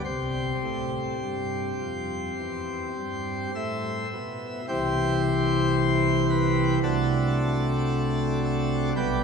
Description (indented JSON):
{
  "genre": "classical, chorale-style piece for pipe organ",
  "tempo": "51-57 BPM",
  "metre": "4/4",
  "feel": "rubato",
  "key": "C major",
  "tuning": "A4 = 439 Hz",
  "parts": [
    { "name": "pipe organ, plenum", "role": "solo", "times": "0.0-9.2 s", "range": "B1 to E5", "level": "-24 LUFS", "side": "equal", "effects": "none" }
  ],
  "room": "wet cathedral reverb, RT60 4.2 s",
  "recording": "recorded in a church or concert hall",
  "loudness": "-24 LUFS",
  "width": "side -6 dB against mid",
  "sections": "0.0-4.7 A section; 4.7-9.2 B section",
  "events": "none",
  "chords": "0.1 C; 6.8 D7/C"
}